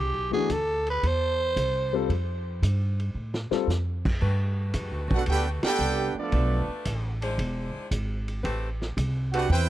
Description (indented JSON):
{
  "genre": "jazz, big band swing",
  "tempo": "113 BPM",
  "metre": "4/4",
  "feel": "swing 69% on 8ths",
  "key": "G major",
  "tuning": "A4 = 441 Hz",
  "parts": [
    { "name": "growling tenor saxophone", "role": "melody", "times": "0.0-2.1 s", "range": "G4 to C5", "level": "-28 LUFS", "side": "right 2 dB", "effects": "tape echo" },
    { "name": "upright bass", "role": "bass", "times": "0.0-9.7 s", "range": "E1 to A2", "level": "-27 LUFS", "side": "equal", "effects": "none" },
    { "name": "warm grand piano", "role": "accompaniment", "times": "0.3-3.7 s", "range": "E3 to A4", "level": "-27 LUFS", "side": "left 11 dB", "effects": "none" },
    { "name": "vintage drum kit", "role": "drums", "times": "0.5-9.7 s", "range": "crash cymbal, hi-hat, kick drum, ride cymbal, snare drum", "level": "-33 LUFS", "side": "right 1 dB", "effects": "none" },
    { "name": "edgy saxophone section", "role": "sustained chords", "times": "4.2-9.4 s", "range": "Ab3 to C5", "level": "-35 LUFS", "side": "left 2 dB", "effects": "none" },
    { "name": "clear trumpet section", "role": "melody", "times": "5.1-9.7 s", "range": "B3 to G5", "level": "-28 LUFS", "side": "right 2 dB", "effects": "none" },
    { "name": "clear trombone section", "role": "second line", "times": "5.1-9.7 s", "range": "F3 to G4", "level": "-30 LUFS", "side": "right 5 dB", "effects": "none" }
  ],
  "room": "small room ambience",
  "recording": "dry, close 1970s-style studio recording",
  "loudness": "-24 LUFS",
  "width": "side -14 dB against mid",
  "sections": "0.0-4.2 A section; 4.2-9.7 B section",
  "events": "tenor saxophone solo 0.0-4.2; drum fill 3.1-3.7; band accent 5.5",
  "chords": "0.0 C; 2.1 Fadd9; 4.2 Gmaj9; 6.3 Bm7b5; 7.4 E7b13; 8.4 Am9",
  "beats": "0.49 1.03 1.56 | 2.09 2.62 3.15 3.68 | 4.21 4.74 5.27 5.80 | 6.33 6.86 7.38 7.91 | 8.44 8.97 9.50"
}